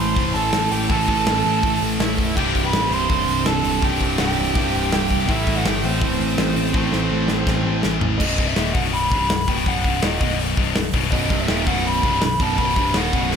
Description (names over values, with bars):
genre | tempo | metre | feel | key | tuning
heavy metal | 164 BPM | 4/4 | straight | B phrygian dominant | A4 = 436 Hz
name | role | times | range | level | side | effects
smooth overdriven lead guitar | melody | 0.0-13.3 s | C5 to C6 | -24 LUFS | right 2 dB | slapback echo, digital delay
high-gain lead guitar | second line | 0.0-7.8 s | C4 to C5 | -29 LUFS | right 4 dB | distortion, slapback echo
distorted electric guitar | riff | 0.0-13.4 s | B1 to A3 | -27 LUFS | left 1 dB | distortion
heavy high-gain guitar | riff | 0.0-13.4 s | B1 to A3 | -26 LUFS | left 13 dB | distortion
tight distorted guitar | riff | 0.0-8.2, 11.1-13.4 s | B1 to A3 | -26 LUFS | right 10 dB | distortion, slapback echo
modern bright picked electric bass | bass | 0.0-13.4 s | B0 to A1 | -25 LUFS | left 1 dB | none
modern studio drum kit | drums | 0.2-13.4 s | crash cymbal, hi-hat, kick drum, snare drum, toms | -23 LUFS | left 1 dB | none
room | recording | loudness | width
moderate lush hall reverb, RT60 1.7 s | big arena sound | -17 LUFS | side -7 dB against mid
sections
0.0-8.2 A section; 8.2-13.4 B section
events
drum fill 6.7-8.2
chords
0.0 C; 8.2 B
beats
0.17 0.53 | 0.90 1.27 1.63 2.00 | 2.36 2.73 3.09 3.46 | 3.83 4.19 4.55 4.92 | 5.29 5.65 6.01 6.38 | 6.74 7.11 7.47 7.84 | 8.20 8.57 8.94 9.30 | 9.66 10.03 10.40 10.76 | 11.13 11.49 11.86 12.22 | 12.59 12.95 13.32